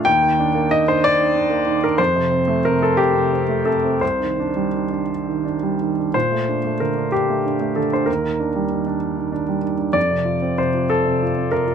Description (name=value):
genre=neoclassical minimalist piano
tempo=55-66 BPM (dotted quarters)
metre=6/8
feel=rubato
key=Bb major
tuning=A4 = 439 Hz
part: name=clear upright piano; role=solo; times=0.0-11.7 s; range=C2 to G5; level=-17 LUFS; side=equal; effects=none
room=little or no reverb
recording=close, detailed microphones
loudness=-17 LUFS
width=side -7 dB against mid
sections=0.0-6.1 A section; 6.1-11.7 B section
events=none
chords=0.1 Ebmaj7; 2.0 F; 4.0 Cmadd9; 6.1 Bbmaj7; 8.1 Ebmaj7; 10.0 F